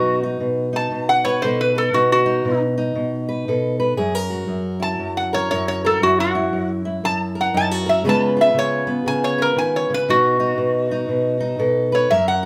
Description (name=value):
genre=acoustic country blues, solo or duo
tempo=118 BPM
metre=4/4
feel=swing 62% on 8ths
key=unclear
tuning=A4 = 442 Hz
part: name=lap resonator guitar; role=melody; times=0.0-12.5 s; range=F#4 to A5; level=-21 LUFS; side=equal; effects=none
part: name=fingerpicked steel-string acoustic guitar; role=accompaniment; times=0.0-12.5 s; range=F#2 to B4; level=-22 LUFS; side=equal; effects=none
room=light reverb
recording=band playing live in one room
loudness=-20 LUFS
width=mono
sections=0.0-12.5 A section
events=resonator guitar played with a steel bar solo 0.0-12.5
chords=0.0 B7; 4.0 F#7; 8.1 C#7; 10.1 B7